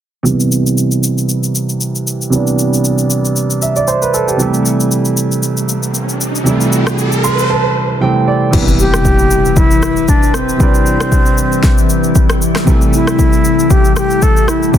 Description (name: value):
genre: amapiano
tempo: 116 BPM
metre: 4/4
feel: swing 55% on 16ths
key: C major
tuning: A4 = 436 Hz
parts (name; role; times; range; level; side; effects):
- dark grand piano; accompaniment; 0.2-14.8 s; C3 to C6; -14 LUFS; right 2 dB; low-pass filter
- deep house drum kit; drums; 0.3-14.8 s; crash cymbal, kick drum, rim click, shaker, snare drum; -14 LUFS; equal; soft clipping on snare
- riser and impact; sound effects; 5.5-10.6 s; none; -19 LUFS; equal; none
- glassy FM pad; sustained chords; 8.5-14.8 s; E3 to B4; -18 LUFS; left 3 dB; ensemble chorus, built-in reverb, sidechain pumping
- bright reedy alto flute; melody; 8.8-14.8 s; C4 to A4; -16 LUFS; left 2 dB; digital delay
room: little or no reverb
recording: dense, heavily limited modern master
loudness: -10 LUFS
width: side -10 dB against mid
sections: 0.3-8.5 A section; 8.5-14.8 B section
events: filter sweep on grand piano 0.3-8.5; riser 5.5-8.5; grand piano fill 7.0-8.5; impact 8.5-10.6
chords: 0.3 Cmaj7; 4.4 Am7; 8.5 Cmaj7; 12.7 Am7